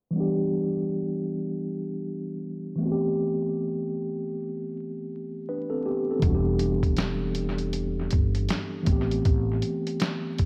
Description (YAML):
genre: lo-fi hip hop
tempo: 79 BPM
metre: 4/4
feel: swing 62% on 16ths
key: E minor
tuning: A4 = 439 Hz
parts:
  - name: mellow tine electric piano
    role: accompaniment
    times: 0.1-10.5 s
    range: E3 to B4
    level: -30 LUFS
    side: equal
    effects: cassette tape, low-pass filter
  - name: upright bass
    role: bass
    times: 6.2-9.6 s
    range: E1 to A1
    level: -30 LUFS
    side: equal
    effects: none
  - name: lo-fi sampler-style drum kit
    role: drums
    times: 6.2-10.5 s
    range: hi-hat, kick drum, snare drum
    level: -29 LUFS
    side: equal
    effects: analog delay
room: moderate plate reverb, RT60 1.8 s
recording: echo-heavy mix, vinyl crackle, low-pass filter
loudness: -28 LUFS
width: mono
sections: 0.1-6.2 A section; 6.2-10.5 B section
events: filter sweep 0.1-6.2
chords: 0.1 Em7; 2.8 Am9